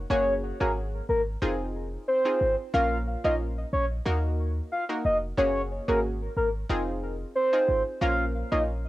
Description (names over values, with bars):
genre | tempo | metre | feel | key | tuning
dancehall | 91 BPM | 4/4 | straight | unclear | A4 = 439 Hz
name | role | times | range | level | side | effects
clean 808-style bass | bass | 0.0-8.9 s | F1 to Eb2 | -30 LUFS | equal | none
soft octave-layered synth lead | melody | 0.1-8.6 s | Bb4 to F5 | -26 LUFS | equal | chorus, cassette tape, tape echo
analog pluck | accompaniment | 0.1-8.7 s | Bb3 to Bb4 | -31 LUFS | equal | chorus, cassette tape
room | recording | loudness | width
light reverb | home recording on cassette | -24 LUFS | side -16 dB against mid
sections
0.1-8.9 A section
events
none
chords
0.1 Gbadd9; 1.4 Fm7; 2.7 Bbm; 4.1 Ebm; 5.4 Gbadd9; 6.7 Fm7; 8.0 Bbm